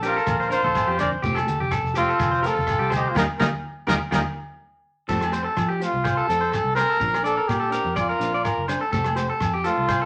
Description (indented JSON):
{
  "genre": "highlife guitar band",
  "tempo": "125 BPM",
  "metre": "4/4",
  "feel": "swing 53% on 16ths",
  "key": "F mixolydian",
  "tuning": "A4 = 438 Hz",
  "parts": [
    { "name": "breathy trumpet", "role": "melody", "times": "0.0-10.1 s", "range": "F4 to D5", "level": "-26 LUFS", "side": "equal", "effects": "none" },
    { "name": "nylon-string guitar", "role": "accompaniment", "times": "0.0-9.8 s", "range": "F3 to G4", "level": "-34 LUFS", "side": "equal", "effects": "none" },
    { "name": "electric guitar at the edge of break-up", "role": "arpeggios", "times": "0.0-10.1 s", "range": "F4 to D5", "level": "-28 LUFS", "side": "equal", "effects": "none" },
    { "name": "fingered electric bass", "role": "bass", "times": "0.0-10.0 s", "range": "F1 to F3", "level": "-32 LUFS", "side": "equal", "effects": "none" },
    { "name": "cloth-damped thuddy drum kit", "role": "drums", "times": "0.0-10.0 s", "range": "crash cymbal, hi-hat, kick drum, rim click, snare drum", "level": "-34 LUFS", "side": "equal", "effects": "none" },
    { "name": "shekere", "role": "percussion", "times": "0.0-10.0 s", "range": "none", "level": "-38 LUFS", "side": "equal", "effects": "none" },
    { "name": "clear trumpet", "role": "second line", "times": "0.1-4.2 s", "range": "Bb3 to Bb4", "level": "-32 LUFS", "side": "equal", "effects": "none" },
    { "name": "agogo bells", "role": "percussion", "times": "0.3-10.0 s", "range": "none", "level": "-36 LUFS", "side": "equal", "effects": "none" },
    { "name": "congas", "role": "percussion", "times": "0.3-4.3 s", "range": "none", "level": "-34 LUFS", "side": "equal", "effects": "none" }
  ],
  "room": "moderate studio reverb, RT60 0.7 s",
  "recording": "none",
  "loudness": "-23 LUFS",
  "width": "mono",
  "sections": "0.0-5.1 A section; 5.1-10.1 B section",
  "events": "band accent 3.2-5.1",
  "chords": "0.0 Bbadd9; 1.2 Fadd9; 3.2 Ebadd9; 5.1 Fadd9; 7.0 Bbadd9; 8.9 Fadd9"
}